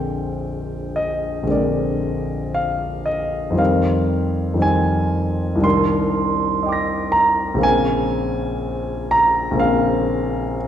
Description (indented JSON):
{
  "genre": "classical, impressionist solo piano",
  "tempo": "56-63 BPM",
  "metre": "4/4",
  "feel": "rubato",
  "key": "unclear",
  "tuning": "A4 = 440 Hz",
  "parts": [
    { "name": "warm concert grand piano", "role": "solo", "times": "0.0-10.7 s", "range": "Bb1 to Bb6", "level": "-17 LUFS", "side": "equal", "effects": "none" }
  ],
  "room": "wet scoring stage reverb, RT60 1.6 s",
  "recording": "recorded in a church or concert hall",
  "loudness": "-17 LUFS",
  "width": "side -9 dB against mid",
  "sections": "0.0-10.7 A section",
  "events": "none",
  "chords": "0.0 Bb13; 3.6 Fm11; 5.6 Cm9; 7.6 Bbm9"
}